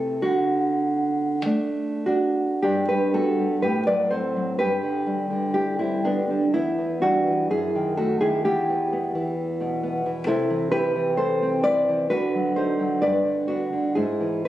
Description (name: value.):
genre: romantic piece for solo classical guitar.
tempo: 48-68 BPM.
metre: 2/4.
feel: rubato.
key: G major.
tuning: A4 = 440 Hz.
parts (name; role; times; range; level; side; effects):
nylon-string guitar; solo; 0.0-14.5 s; E2 to D5; -21 LUFS; equal; none.
room: light reverb.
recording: recorded on a phone in the room, studio reverb, compression.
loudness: -21 LUFS.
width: side -13 dB against mid.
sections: 0.0-2.6 A section; 2.6-14.5 B section.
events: none.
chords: 0.2 D; 2.6 G; 3.6 F#dim/A; 4.6 G; 6.5 Em; 7.5 D#dim/F#; 8.5 Em; 10.3 Am/C; 12.1 D7b9; 13.0 G; 14.0 E/G#.